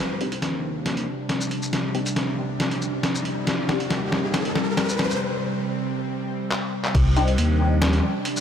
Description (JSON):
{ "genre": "deep dubstep", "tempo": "138 BPM", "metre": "4/4", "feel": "half-time", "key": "C minor", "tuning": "A4 = 440 Hz", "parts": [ { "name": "bowed-like drone", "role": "sustained chords", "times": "0.0-8.4 s", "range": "C3 to D4", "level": "-27 LUFS", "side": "right 1 dB", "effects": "built-in reverb" }, { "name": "dark detuned saw bass", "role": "bass", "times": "0.0-8.0 s", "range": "C2 to Eb2", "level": "-25 LUFS", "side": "left 1 dB", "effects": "tube saturation, high-pass filter" }, { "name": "riser", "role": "sound effects", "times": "0.0-5.2 s", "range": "none", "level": "-32 LUFS", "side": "left 1 dB", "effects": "none" }, { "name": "filtered dub chord stab", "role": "stabs", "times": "0.2-3.8, 7.2-7.3 s", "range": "C4 to G4", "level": "-31 LUFS", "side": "left 4 dB", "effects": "phaser, analog chorus, dub echo" }, { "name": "trip hop sampler-style drum kit", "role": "drums", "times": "0.2-8.4 s", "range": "crash cymbal, handclaps, hi-hat, shaker, snare drum", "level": "-26 LUFS", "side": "left 1 dB", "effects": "none" }, { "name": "electronic kick drum", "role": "drums", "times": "6.9-7.0 s", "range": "none", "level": "-22 LUFS", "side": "equal", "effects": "none" } ], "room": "moderate huge ambient reverb, RT60 6.4 s", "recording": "none", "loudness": "-21 LUFS", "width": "side -8 dB against mid", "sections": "0.0-6.9 A section; 6.9-8.4 B section", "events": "build-up 0.0-6.9; drum fill 0.0-5.2, 6.5-6.9; riser 0.0-5.2; break 5.2-6.9; drop 6.9-8.4", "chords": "0.0 Cmadd9", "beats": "0.43 0.86 1.29 | 1.73 2.17 2.60 3.03 | 3.47 3.90 4.34 4.77 | 5.21 5.64 6.08 6.51 | 6.95 7.38 7.82 8.25" }